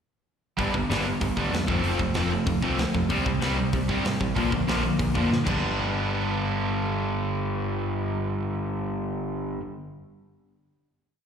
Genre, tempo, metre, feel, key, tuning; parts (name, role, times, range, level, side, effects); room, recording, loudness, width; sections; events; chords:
punk rock; 192 BPM; 4/4; straight; G mixolydian; A4 = 442 Hz
cranked stack guitar; riff; 0.6-9.6 s; G2 to D4; -28 LUFS; right 7 dB; overdrive, slapback echo
raw garage guitar; riff; 0.6-9.6 s; F2 to C4; -29 LUFS; left 10 dB; overdrive, slapback echo
overdriven picked electric bass; bass; 0.6-9.6 s; F1 to A2; -30 LUFS; left 1 dB
tight metal drum kit; drums; 0.6-5.5 s; crash cymbal, hi-hat, kick drum, snare drum; -31 LUFS; equal
small room ambience; live gig heard through the venue's PA, recital hall reverb; -24 LUFS; side -7 dB against mid
0.6-5.6 verse; 5.6-8.1 final hit
drum fill 5.3-5.6
0.6 G; 1.7 F; 3.1 C5; 4.4 Bb; 5.5 G